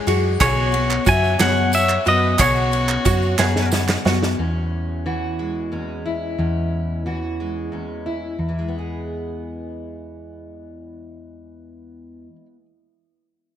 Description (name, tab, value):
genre	indie folk with a building arrangement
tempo	60 BPM (dotted quarters)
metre	6/8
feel	straight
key	E major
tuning	A4 = 440 Hz
part	picked twelve-string acoustic guitar	accompaniment	0.0-4.4 s	B2 to G#4	-24 LUFS	left 7 dB	wide subtle chorus
part	tenor ukulele	arpeggios	0.0-4.4 s	F#4 to G#4	-25 LUFS	right 6 dB	none
part	hollow-body short-scale picked electric bass	bass	0.1-12.2 s	B1 to F#2	-23 LUFS	equal	none
part	unplugged drum kit	drums	0.1-4.4 s	kick drum, ride cymbal, snare drum	-23 LUFS	equal	none
part	tambourine	percussion	0.1-3.9 s	none	-32 LUFS	right 8 dB	none
part	semi-hollow electric guitar	melody	0.4-3.7 s	C#5 to G#5	-20 LUFS	right 1 dB	harmonic tremolo, digital delay
part	warm fiddle	second line	0.4-3.7 s	F#4 to E5	-27 LUFS	left 7 dB	none
part	group handclap	percussion	0.4-4.0 s	none	-26 LUFS	right 7 dB	none
part	fingerpicked steel-string acoustic guitar	accompaniment	4.4-12.7 s	E2 to G#4	-28 LUFS	equal	wide subtle chorus
room	light reverb, small room ambience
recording	bright 1980s-style digital production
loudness	-18 LUFS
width	side -10 dB against mid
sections	0.0-4.4 A section; 4.4-8.4 B section; 8.4-12.4 C section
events	drum fill 3.4-4.4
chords	0.4 Bsus2; 4.4 C#m/E; 8.4 E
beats	| 0.40 1.39 | 2.39 3.38 | 4.38 5.38 | 6.38 7.39 | 8.39 9.40 | 10.41 11.42